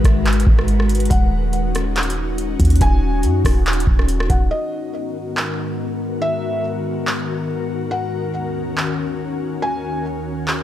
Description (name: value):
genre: hip hop, atmospheric cloud-rap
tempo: 141 BPM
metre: 4/4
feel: half-time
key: G# minor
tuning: A4 = 440 Hz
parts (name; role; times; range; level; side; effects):
- ethereal airy pad; sustained chords; 0.0-10.6 s; D#2 to B4; -23 LUFS; left 2 dB; ensemble chorus, built-in reverb, sidechain pumping
- clean 808-style bass; bass; 0.0-4.5 s; D#1 to F#2; -18 LUFS; equal; none
- booming analog drum machine; drums; 0.0-10.6 s; handclaps, hi-hat, kick drum, rim click; -19 LUFS; equal; none
- felt-muted upright piano; melody; 1.1-10.0 s; D#5 to G#5; -27 LUFS; equal; digital delay
room: digital ambience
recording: none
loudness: -17 LUFS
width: side -12 dB against mid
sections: 0.0-4.5 A section; 4.5-10.6 B section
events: none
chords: 0.0 G#m7; 1.1 D#m7; 4.5 G#m7; 7.9 D#m7